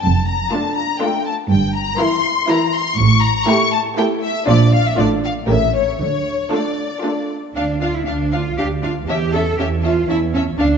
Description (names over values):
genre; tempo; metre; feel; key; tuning
quick classical-period movement for string orchestra; 120 BPM; 3/4; straight; D minor; A4 = 440 Hz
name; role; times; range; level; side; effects
warm symphonic violin section; melody; 0.0-10.7 s; C#5 to C#6; -20 LUFS; left 6 dB; none
rich symphonic cello section; bass; 0.0-10.8 s; F2 to A4; -20 LUFS; right 2 dB; none
warm studio double bass section; bass; 0.0-10.8 s; F1 to E2; -20 LUFS; right 3 dB; none
warm symphonic violin section; second line; 0.5-10.7 s; E4 to F5; -25 LUFS; left 3 dB; none
clear symphonic viola section; accompaniment; 0.5-10.7 s; E3 to E4; -22 LUFS; right 2 dB; none
room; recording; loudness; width
wet scoring stage reverb, RT60 1.8 s; dark, warm production, nothing above 7.9 kHz; -15 LUFS; side -6 dB against mid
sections
0.0-7.6 A section; 7.6-10.8 A section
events
none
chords
0.0 Dm/F; 1.5 Edim/G; 3.0 A5; 4.5 Bb; 5.0 Dm/A; 5.5 A7b9; 6.0 Dm; 9.1 A7/E